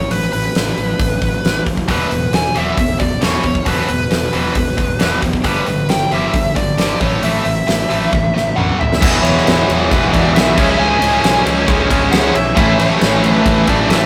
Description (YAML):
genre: hard rock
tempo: 135 BPM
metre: 4/4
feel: straight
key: E mixolydian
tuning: A4 = 440 Hz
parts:
  - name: bluesy overdriven lead guitar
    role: melody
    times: 0.0-14.1 s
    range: B4 to G#5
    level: -22 LUFS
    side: equal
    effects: distortion
  - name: fuzz fingered electric bass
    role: bass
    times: 0.0-14.1 s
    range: E1 to C#2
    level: -24 LUFS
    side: equal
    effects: overdrive
  - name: huge arena drum kit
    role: drums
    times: 0.1-14.0 s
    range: crash cymbal, hi-hat, kick drum, ride cymbal, snare drum, toms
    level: -19 LUFS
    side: equal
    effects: none
  - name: tight distorted guitar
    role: riff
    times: 1.9-14.1 s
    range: E2 to C#4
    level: -21 LUFS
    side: equal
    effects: distortion
  - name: overdriven tonewheel organ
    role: sustained chords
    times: 9.0-14.1 s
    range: E3 to C#5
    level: -25 LUFS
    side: equal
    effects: none
  - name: distorted electric guitar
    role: riff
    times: 9.0-14.1 s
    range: A2 to E4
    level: -20 LUFS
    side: equal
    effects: overdrive
room: light reverb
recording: rough rehearsal-room recording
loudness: -15 LUFS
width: mono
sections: 0.0-9.0 A section; 9.0-14.1 B section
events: drum fill 8.1-9.0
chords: 0.0 F#madd11 (rootless); 1.9 E5; 5.5 G; 7.0 A5; 9.0 E; 10.6 C#m; 12.6 A